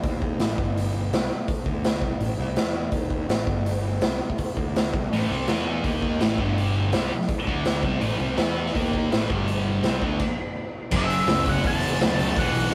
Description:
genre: garage rock duo or trio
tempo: 165 BPM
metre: 4/4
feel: straight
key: unclear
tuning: A4 = 439 Hz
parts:
  - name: fuzz fingered electric bass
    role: bass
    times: 0.0-12.7 s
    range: E1 to E2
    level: -31 LUFS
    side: equal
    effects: overdrive
  - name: raw garage drum kit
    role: drums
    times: 0.0-12.7 s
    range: crash cymbal, hi-hat, kick drum, snare drum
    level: -28 LUFS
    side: equal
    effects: none
  - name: thick fuzz guitar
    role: riff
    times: 5.1-12.7 s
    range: E2 to E4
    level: -28 LUFS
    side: equal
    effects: distortion
  - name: octave-fuzz lead guitar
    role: melody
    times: 11.0-12.7 s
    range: E5 to A5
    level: -29 LUFS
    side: equal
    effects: distortion
room: light reverb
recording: rough rehearsal-room recording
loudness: -24 LUFS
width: mono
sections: 0.0-10.9 A section; 10.9-12.7 B section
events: stop 10.2-10.9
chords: 0.0 N.C.; 2.0 Am; 2.6 N.C.; 4.9 A5; 5.5 E5; 5.8 D#5; 6.2 A5; 6.4 G5; 6.9 C5; 7.5 D5; 7.8 A5; 8.4 E5; 8.8 D#5; 9.1 A5; 9.3 G5; 9.8 C5; 10.0 D5; 10.4 N.C.; 10.9 F#m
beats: 0.03 0.39 | 0.75 1.12 1.48 1.84 | 2.21 2.57 2.94 3.30 | 3.66 4.03 4.39 4.75 | 5.12 5.48 5.85 6.21 | 6.57 6.94 7.30 7.66 | 8.03 8.39 8.75 9.12 | 9.48 9.84 10.20 10.57 | 10.93 11.29 11.65 12.01 | 12.37 12.73

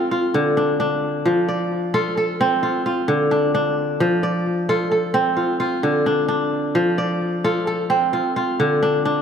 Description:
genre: west african traditional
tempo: 87 BPM (dotted quarters)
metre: 12/8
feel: straight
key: F major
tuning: A4 = 440 Hz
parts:
  - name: kora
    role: solo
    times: 0.0-9.2 s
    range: D3 to D5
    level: -18 LUFS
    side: equal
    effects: analog delay
room: wet plate reverb, RT60 2.4 s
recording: dreamy mix soaked in reverb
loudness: -18 LUFS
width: side -7 dB against mid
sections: 0.0-6.8 A section; 6.8-9.2 B section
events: none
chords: 0.0 Dm; 1.3 F; 2.6 Dm; 4.0 F; 5.4 Dm; 6.8 F; 8.1 Dm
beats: 0.57 | 1.26 1.94 2.63 3.32 | 4.00 4.69 5.38 6.07 | 6.76 7.45 8.14 8.83

